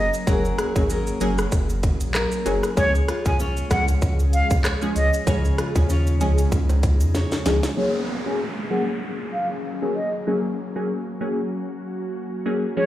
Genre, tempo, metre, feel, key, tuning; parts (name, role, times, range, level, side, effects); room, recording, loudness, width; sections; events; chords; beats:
dancehall; 96 BPM; 4/4; swing 56% on 16ths; A4 = 441 Hz
silver concert flute; melody; 0.0-12.9 s; Db5 to Ab5; -26 LUFS; right 1 dB; low-pass filter, digital delay
ethereal airy pad; sustained chords; 0.0-12.9 s; F3 to Ab4; -31 LUFS; left 1 dB; ensemble chorus, built-in reverb, sidechain pumping, low-pass filter
nylon-string guitar; arpeggios; 0.0-8.3 s; Db3 to Db5; -29 LUFS; left 2 dB
sub bass with octave; bass; 0.0-7.6 s; Gb1 to F2; -22 LUFS; equal
island pop drum kit; drums; 0.1-7.8 s; handclaps, hi-hat, kick drum, rim click, shaker, snare drum; -23 LUFS; equal
maracas and timbales; percussion; 0.1-7.8 s; -38 LUFS; right 4 dB
wavetable chord stab; accompaniment; 0.3-12.9 s; F3 to Ab4; -25 LUFS; left 1 dB; sidechain pumping, low-pass filter
downlifter; sound effects; 7.8-12.8 s; -33 LUFS; right 1 dB
light reverb, digital ambience; played on a big sound system in a bare room, stone room reverb; -20 LUFS; side -13 dB against mid
0.0-7.8 A section; 7.8-12.9 B section
drum fill 7.1-7.8; filter sweep 7.8-12.9
0.0 Gbadd9; 2.8 Db; 7.8 Gbadd9
| 0.27 0.90 1.52 2.15 | 2.77 3.40 4.02 4.65 | 5.27 5.90 6.52 7.15 | 7.77 8.40 9.02 9.65 | 10.27 10.90 11.52 12.15 | 12.77